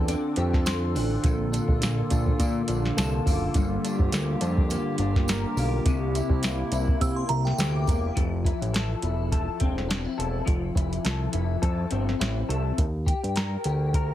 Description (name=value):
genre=indie pop, bedroom pop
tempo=104 BPM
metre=4/4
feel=swing 55% on 16ths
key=F major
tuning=A4 = 440 Hz
part: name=electric guitar through a small old amp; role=accompaniment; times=0.0-14.1 s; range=G2 to C5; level=-30 LUFS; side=left 3 dB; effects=ensemble chorus, warbly pitch drift
part: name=hollow soft pad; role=sustained chords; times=0.0-8.1 s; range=C3 to A4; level=-32 LUFS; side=right 1 dB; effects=chorus
part: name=fat analog bass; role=bass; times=0.0-14.1 s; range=E1 to C3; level=-27 LUFS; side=equal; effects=none
part: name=soft vintage rhythm box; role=drums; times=0.1-14.1 s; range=hi-hat, kick drum, snare drum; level=-26 LUFS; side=equal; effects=none
part: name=tambourine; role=percussion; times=0.1-8.0 s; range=none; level=-42 LUFS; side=right 8 dB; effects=none
part: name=glassy synth bell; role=second line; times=7.0-8.1 s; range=G5 to E6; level=-33 LUFS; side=right 4 dB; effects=tremolo, wide subtle chorus, digital delay
room=light reverb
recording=heavily compressed radio sound, multiband compression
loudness=-23 LUFS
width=side -12 dB against mid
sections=0.0-8.2 A section; 8.2-14.1 B section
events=none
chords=0.0 F6; 1.2 Bbmaj7; 3.5 Gm7; 5.9 C7; 8.2 Fmaj7; 12.8 Ebmaj7